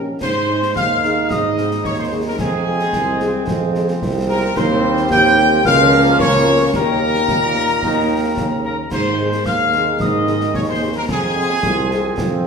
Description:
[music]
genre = military-style march for wind band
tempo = 110 BPM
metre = 2/4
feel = straight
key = Ab major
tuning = A4 = 440 Hz
[part]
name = dark trumpet section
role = melody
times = 0.0-12.5 s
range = Ab4 to G5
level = -20 LUFS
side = right 1 dB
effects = none
[part]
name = mellow French horn section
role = accompaniment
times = 0.0-12.5 s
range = Ab3 to Bb4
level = -23 LUFS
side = left 3 dB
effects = none
[part]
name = warm tuba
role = bass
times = 0.0-12.5 s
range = Bb1 to Ab2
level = -20 LUFS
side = right 2 dB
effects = none
[part]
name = hollow piccolo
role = second line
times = 0.2-12.5 s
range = Ab5 to G6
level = -21 LUFS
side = left 4 dB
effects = none
[part]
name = warm trombone section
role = sustained chords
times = 0.2-12.5 s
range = Bb2 to Eb4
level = -25 LUFS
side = right 2 dB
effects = none
[part]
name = concert snare drum, clash cymbals and concert bass drum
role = drums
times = 0.2-12.4 s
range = none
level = -26 LUFS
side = left 1 dB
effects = none
[sound]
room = wet recital hall reverb, RT60 1.4 s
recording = recorded in a church or concert hall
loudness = -14 LUFS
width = side -6 dB against mid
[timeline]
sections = 0.2-12.5 A section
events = none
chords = 0.2 Ab; 2.4 Fm; 4.6 Cm/Eb; 5.7 Bbm/Db; 6.7 Eb; 8.9 Ab; 11.1 Fm

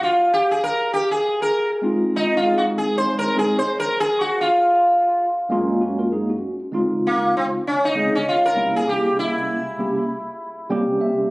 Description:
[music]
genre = hip hop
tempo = 98 BPM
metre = 4/4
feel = swing 58% on 16ths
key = unclear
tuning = A4 = 441 Hz
[part]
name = sitar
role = melody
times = 0.0-10.7 s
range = Bb3 to C5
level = -18 LUFS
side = equal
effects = plate reverb
[part]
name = tine electric piano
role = accompaniment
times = 1.8-11.3 s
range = Gb2 to G5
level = -21 LUFS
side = equal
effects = medium stereo tremolo, plate reverb
[sound]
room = wet studio reverb, RT60 0.5 s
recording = recorded on a phone in the room, club reverb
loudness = -18 LUFS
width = side -23 dB against mid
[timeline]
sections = 0.0-6.4 A section; 6.4-11.3 A section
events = sitar solo 0.0-6.4, 6.4-11.3; tine electric piano fill 10.4-11.3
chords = 0.0 C7(no3) (rootless); 1.5 Fm7; 4.0 Gbmaj9; 6.4 Dbmaj9; 8.6 C7b9

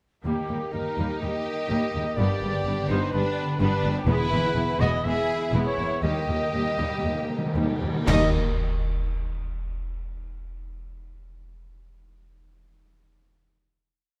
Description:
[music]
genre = cinematic, heroic adventure film score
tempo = 116-126 BPM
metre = 4/4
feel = straight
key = unclear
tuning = A4 = 440 Hz
[part]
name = rich symphonic violin section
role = melody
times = 0.2-8.4 s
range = Bb3 to Eb5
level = -37 LUFS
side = equal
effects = none
[part]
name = large flute ensemble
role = second line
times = 0.2-8.4 s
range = G4 to E5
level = -40 LUFS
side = equal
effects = none
[part]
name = mellow French horn section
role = sustained chords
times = 0.2-8.3 s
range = G3 to G#4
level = -38 LUFS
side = equal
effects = none
[part]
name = timpani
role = percussion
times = 0.2-0.9, 6.0-8.3 s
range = Eb3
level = -35 LUFS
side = equal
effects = none
[part]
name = bright clarinet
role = second line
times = 0.3-8.3 s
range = G4 to E5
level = -38 LUFS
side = equal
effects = none
[part]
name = warm symphonic violin section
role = second line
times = 0.3-8.4 s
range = Bb3 to G4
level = -40 LUFS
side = equal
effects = none
[part]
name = warm symphonic viola section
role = accompaniment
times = 0.3-8.4 s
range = F3 to B3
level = -37 LUFS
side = equal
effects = none
[part]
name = concert harp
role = arpeggios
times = 0.3-8.4 s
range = G2 to Bb4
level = -36 LUFS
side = equal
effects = none
[part]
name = warm trumpet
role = stabs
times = 0.3-8.3 s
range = G4 to E5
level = -33 LUFS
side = equal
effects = none
[part]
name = dark symphonic cello section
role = bass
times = 0.3-8.4 s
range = Eb2 to G2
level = -32 LUFS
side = equal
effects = none
[part]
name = warm symphonic double bass section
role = bass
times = 0.3-8.4 s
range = E1 to Eb2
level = -32 LUFS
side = equal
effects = none
[part]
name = cymbal swell, clash cymbals and concert bass drum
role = percussion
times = 4.1-9.1 s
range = none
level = -33 LUFS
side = equal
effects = none
[sound]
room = moderate scoring stage reverb, RT60 1.8 s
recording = none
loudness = -26 LUFS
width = mono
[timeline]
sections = 0.3-8.1 theme; 8.1-10.1 final chord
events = slowing down 3.1-8.1; timpani fill 6.0-8.1; band accent 8.1-8.6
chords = 0.3 Eb; 2.2 G; 4.1 E; 6.0 Eb

